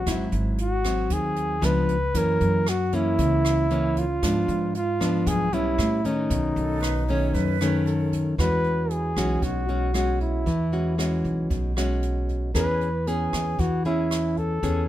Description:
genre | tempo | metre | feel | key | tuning
bossa nova | 115 BPM | 4/4 | straight | E major | A4 = 440 Hz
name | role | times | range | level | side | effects
mellow flugelhorn | melody | 0.0-14.9 s | D#4 to B4 | -26 LUFS | right 1 dB | none
nylon-string guitar | accompaniment | 0.0-14.9 s | F#2 to G#4 | -26 LUFS | left 1 dB | none
upright bass | bass | 0.0-14.9 s | G#1 to A2 | -27 LUFS | equal | none
jazz brush drum kit | drums | 0.1-14.7 s | hi-hat, kick drum, rim click | -32 LUFS | right 1 dB | none
breathy jazz flute | second line | 6.6-8.4 s | A4 to C#5 | -32 LUFS | right 10 dB | none
room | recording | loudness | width
light reverb | minimal, uncompressed stereo recording | -22 LUFS | side -13 dB against mid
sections
0.0-8.4 A section; 8.4-14.9 B section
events
none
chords
0.1 G#7b13; 1.6 C#7b9; 2.1 F#7; 4.2 Bdim7; 5.8 A9; 6.3 B9; 8.4 E69; 12.5 Amaj9/E

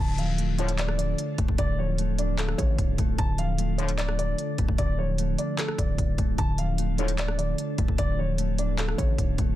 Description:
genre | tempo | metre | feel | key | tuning
hip hop, trap | 150 BPM | 4/4 | half-time | D harmonic minor | A4 = 435 Hz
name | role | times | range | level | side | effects
dark concert grand piano | melody | 0.0-9.5 s | A4 to A5 | -33 LUFS | equal | low-pass filter, ping-pong delay
mellow electric guitar | accompaniment | 0.0-9.6 s | D3 to F5 | -31 LUFS | right 2 dB | low-pass filter
glassy FM pad | sustained chords | 0.0-9.6 s | D3 to A4 | -38 LUFS | left 2 dB | ensemble chorus, built-in reverb
distorted 808-style bass | bass | 0.0-9.6 s | C#1 to A1 | -27 LUFS | equal | distortion
trap drum kit | drums | 0.2-9.5 s | handclaps, hi-hat, kick drum, rim click | -28 LUFS | equal | none
clear brass ensemble | stabs | 0.6-0.7, 3.8-3.9, 7.0-7.1 s | A2 to F3 | -35 LUFS | left 6 dB | none
room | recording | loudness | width
little or no reverb | dense, heavily limited modern master | -24 LUFS | side -14 dB against mid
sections
0.0-9.6 A section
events
none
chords
0.0 Dm

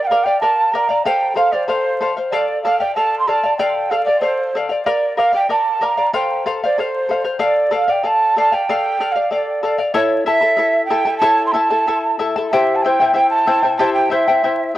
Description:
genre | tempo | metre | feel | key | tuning
andean folk, Andean ensemble | 94 BPM | 2/4 | straight | D minor | A4 = 441 Hz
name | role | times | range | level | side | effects
breathy mellow quena | melody | 0.0-14.7 s | C5 to C6 | -16 LUFS | right 2 dB | cassette tape, tape echo
charango | accompaniment | 0.0-14.8 s | E4 to A5 | -19 LUFS | left 4 dB | none
room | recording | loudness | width
moderate spring reverb, RT60 1.9 s | home recording on cassette, vinyl crackle | -14 LUFS | side -14 dB against mid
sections
0.0-10.0 A section; 10.0-14.8 B section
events
none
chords
0.0 Bb; 1.1 F; 2.3 Dm; 4.9 Bb; 6.1 F; 7.4 Dm; 10.0 A; 12.5 C

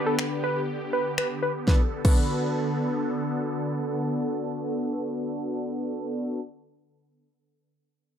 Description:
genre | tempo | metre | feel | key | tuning
dance-pop | 121 BPM | 4/4 | straight | B minor | A4 = 440 Hz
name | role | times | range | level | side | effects
funky polysynth comp | accompaniment | 0.0-6.4 s | B3 to B4 | -29 LUFS | equal | chorus, sidechain pumping, low-pass filter
supersaw pad | sustained chords | 0.0-6.0 s | D3 to A4 | -32 LUFS | equal | phaser, sidechain pumping, low-pass filter
plucky unison lead | melody | 0.1-3.1 s | A4 to B4 | -30 LUFS | equal | sidechain pumping, low-pass filter, digital delay
pop drum kit | drums | 0.2-2.2 s | crash cymbal, finger snaps, kick drum, snare drum | -22 LUFS | equal | none
room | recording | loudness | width
light reverb, digital ambience | none | -25 LUFS | side -9 dB against mid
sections
0.0-1.7 A section; 1.7-5.6 B section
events
filter sweep 0.0-1.7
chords
0.0 G; 1.7 Bm7

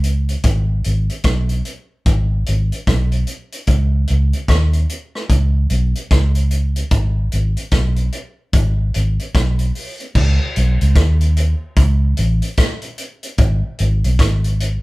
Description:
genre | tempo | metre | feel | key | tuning
roots reggae | 74 BPM | 4/4 | swing 61% on 16ths | unclear | A4 = 439 Hz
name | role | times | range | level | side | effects
vintage muted fingered electric bass | bass | 0.0-14.8 s | G#1 to D#2 | -15 LUFS | equal | none
vintage drum kit | drums | 0.0-14.8 s | crash cymbal, hi-hat, kick drum, rim click | -18 LUFS | equal | none
room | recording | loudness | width
moderate studio reverb, RT60 0.5 s | band playing live in one room | -15 LUFS | side -21 dB against mid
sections
0.0-10.2 A section; 10.2-14.8 B section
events
none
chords
none

